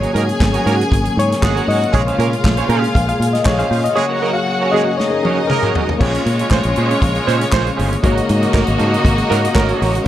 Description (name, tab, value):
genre	disco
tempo	118 BPM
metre	4/4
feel	straight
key	unclear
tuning	A4 = 440 Hz
part	clear studio violin section	second line	0.0-10.1 s	Ab3 to Ab5	-22 LUFS	left 1 dB	none
part	bright reed electric piano	accompaniment	0.0-10.1 s	C3 to Gb5	-21 LUFS	left 4 dB	spring reverb
part	electric guitar at the edge of break-up	accompaniment	0.0-10.0 s	Db4 to Eb5	-25 LUFS	right 6 dB	ensemble chorus
part	dark studio string section	sustained chords	0.0-10.1 s	Bb2 to Ab4	-23 LUFS	left 2 dB	none
part	fingered electric bass	bass	0.0-10.0 s	G1 to Bb2	-19 LUFS	equal	none
part	warm soul drum kit	drums	0.0-10.1 s	crash cymbal, handclaps, hi-hat, kick drum, snare drum, toms	-19 LUFS	equal	none
part	clear horn section	stabs	0.1-9.9 s	Gb3 to Db5	-23 LUFS	right 8 dB	none
room	light reverb, small room ambience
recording	dark, warm production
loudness	-13 LUFS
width	side -12 dB against mid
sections	0.0-6.0 A section; 6.0-10.1 B section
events	reed electric piano solo 0.0-6.0; drum fill 5.0-6.0; reed electric piano fill 9.1-10.1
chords	0.0 Ab9sus4; 1.9 Bbm9; 4.0 Ab9sus4; 6.0 Bbm9; 8.0 Ab9sus4